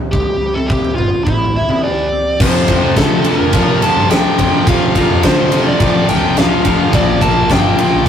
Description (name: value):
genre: quiet-loud alternative rock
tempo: 106 BPM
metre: 4/4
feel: straight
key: unclear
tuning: A4 = 441 Hz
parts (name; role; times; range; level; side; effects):
- electric guitar through a small old amp; arpeggios; 0.0-2.4 s; C3 to G4; -25 LUFS; equal; none
- bluesy overdriven lead guitar; melody; 0.1-8.1 s; E4 to A5; -17 LUFS; equal; distortion
- growling picked electric bass; bass; 0.1-8.1 s; G1 to F3; -20 LUFS; equal; overdrive
- huge arena drum kit; drums; 0.1-8.1 s; crash cymbal, kick drum, ride cymbal, snare drum, toms; -16 LUFS; equal; none
- distorted electric guitar; riff; 2.4-8.1 s; F2 to Bb3; -22 LUFS; right 4 dB; distortion
- high-gain distorted guitar; riff; 2.4-8.1 s; F2 to Bb3; -20 LUFS; right 1 dB; distortion
- thick fuzz guitar; riff; 2.4-8.1 s; F2 to Bb3; -16 LUFS; left 4 dB; distortion
room: moderate booth ambience, RT60 0.2 s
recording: rough rehearsal-room recording, warm saturation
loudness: -11 LUFS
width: side -8 dB against mid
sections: 0.0-2.4 A section; 2.4-8.1 B section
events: none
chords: 0.0 C; 2.4 F5; 6.9 Bb